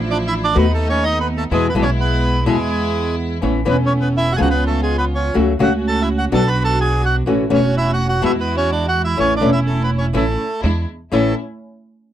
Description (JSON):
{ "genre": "tango", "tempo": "125 BPM", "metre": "4/4", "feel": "rubato", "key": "A major", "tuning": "A4 = 444 Hz", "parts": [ { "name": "warm studio string section", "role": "stabs", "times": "0.0-11.3 s", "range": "F3 to F#4", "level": "-23 LUFS", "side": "right 2 dB", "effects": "none" }, { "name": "upright bass", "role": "bass", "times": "0.0-11.3 s", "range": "E1 to E2", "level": "-20 LUFS", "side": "equal", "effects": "none" }, { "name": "bandoneon", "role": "melody", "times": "0.1-11.3 s", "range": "G#3 to B5", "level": "-20 LUFS", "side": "right 2 dB", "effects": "none" }, { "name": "nylon-string guitar", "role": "accompaniment", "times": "0.5-11.3 s", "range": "A2 to F#4", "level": "-17 LUFS", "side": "left 3 dB", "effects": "none" } ], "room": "light reverb", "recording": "dry, close 1970s-style studio recording", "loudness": "-15 LUFS", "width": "side -11 dB against mid", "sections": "0.0-11.1 A section; 11.1-12.1 B section", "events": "none", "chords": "0.0 Dmadd9; 0.6 B7/D#; 1.5 E; 3.4 Aadd9; 4.4 C#7; 5.4 F#m/C#; 6.3 Bm; 7.3 A6; 8.2 Eadd9; 9.2 A; 10.6 E7; 11.1 A", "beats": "0.09 0.56 1.04 | 1.51 1.99 2.46 2.95 | 3.43 3.92 4.40 4.88 | 5.36 5.84 6.32 6.80 | 7.28 7.75 8.23 8.70 | 9.18 9.66 10.14 10.63 | 11.12" }